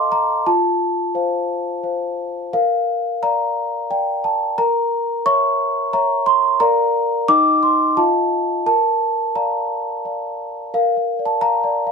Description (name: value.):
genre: classical, lullaby for celesta.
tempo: 88 BPM.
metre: 3/4.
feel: straight.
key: Bb major.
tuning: A4 = 440 Hz.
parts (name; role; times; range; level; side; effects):
large celesta; solo; 0.0-11.9 s; Eb4 to D6; -16 LUFS; equal; none.
room: light reverb.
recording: none.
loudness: -16 LUFS.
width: side -5 dB against mid.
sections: 0.0-10.7 A section; 10.7-11.9 A section.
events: none.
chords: 0.5 F; 2.5 Bb; 4.6 Bbdim; 6.6 Bb; 7.3 Cm/Eb; 8.0 F7; 8.7 Bb.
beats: | 0.46 1.15 1.84 | 2.53 3.22 3.90 | 4.58 5.26 5.93 | 6.61 7.29 7.97 | 8.66 9.35 10.05 | 10.73 11.42.